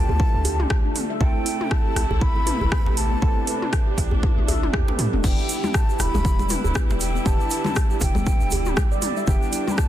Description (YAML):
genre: afro house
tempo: 119 BPM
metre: 4/4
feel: swing 58% on 16ths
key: E phrygian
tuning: A4 = 440 Hz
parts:
  - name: breathy hollow jazz flute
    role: melody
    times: 0.0-9.9 s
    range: G5 to B5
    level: -30 LUFS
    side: left 2 dB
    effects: ping-pong delay
  - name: warm symphonic string section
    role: sustained chords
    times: 0.0-9.9 s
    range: C3 to E4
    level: -33 LUFS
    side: equal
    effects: sidechain pumping
  - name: warm analog keys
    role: stabs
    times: 0.0-9.9 s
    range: A3 to A4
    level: -33 LUFS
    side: right 4 dB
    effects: chorus, sidechain pumping, ping-pong delay
  - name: warm 808-style bass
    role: bass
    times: 0.0-9.4 s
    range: D1 to A2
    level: -25 LUFS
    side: equal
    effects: sidechain pumping
  - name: handpan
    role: arpeggios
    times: 0.1-9.9 s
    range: B3 to E5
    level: -30 LUFS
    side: right 2 dB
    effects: sidechain pumping, ping-pong delay
  - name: djembe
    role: percussion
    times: 0.1-9.4 s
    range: none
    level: -30 LUFS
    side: right 1 dB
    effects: none
  - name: electronic kick drum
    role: drums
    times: 0.2-9.9 s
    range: none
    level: -21 LUFS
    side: equal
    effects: studio ambience
  - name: house drum kit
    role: drums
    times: 0.4-9.9 s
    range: crash cymbal, hi-hat, rim click, toms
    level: -27 LUFS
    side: left 1 dB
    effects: studio ambience, soft clipping on snare
  - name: congas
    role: percussion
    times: 5.2-9.8 s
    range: none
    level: -30 LUFS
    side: left 3 dB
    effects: none
  - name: tube shaker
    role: percussion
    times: 5.2-9.9 s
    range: none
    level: -36 LUFS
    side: right 2 dB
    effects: none
room: small room ambience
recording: dense, heavily limited modern master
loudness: -19 LUFS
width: side -12 dB against mid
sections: 0.0-9.9 A section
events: drum fill 4.2-5.2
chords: 0.0 Dm; 1.2 Am; 5.2 Em7